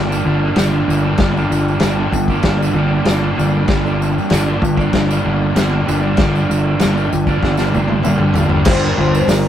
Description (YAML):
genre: garage rock duo or trio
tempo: 96 BPM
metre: 4/4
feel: straight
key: G minor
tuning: A4 = 440 Hz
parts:
  - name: crunchy overdriven guitar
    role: riff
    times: 0.0-9.5 s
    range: G2 to D4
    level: -18 LUFS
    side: right 2 dB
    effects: none
  - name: modern bright picked electric bass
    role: bass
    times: 0.0-9.5 s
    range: G1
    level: -17 LUFS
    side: equal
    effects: overdrive
  - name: tambourine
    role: percussion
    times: 0.1-9.4 s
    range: none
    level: -35 LUFS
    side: right 4 dB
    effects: none
  - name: vintage drum kit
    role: drums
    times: 0.6-9.4 s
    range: crash cymbal, hi-hat, kick drum, snare drum, toms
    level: -19 LUFS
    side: left 1 dB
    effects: none
  - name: electric slide guitar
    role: melody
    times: 8.7-9.4 s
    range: Bb4 to C5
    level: -19 LUFS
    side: left 5 dB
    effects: slapback echo
room: light reverb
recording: rough rehearsal-room recording, tube saturation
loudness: -13 LUFS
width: side -10 dB against mid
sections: 0.0-8.7 A section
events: drum fill 7.4-8.7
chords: 0.0 Gm; 8.7 G5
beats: 0.57 | 1.19 1.82 2.44 3.07 | 3.69 4.32 4.94 5.56 | 6.19 6.81 7.43 8.05 | 8.67 9.29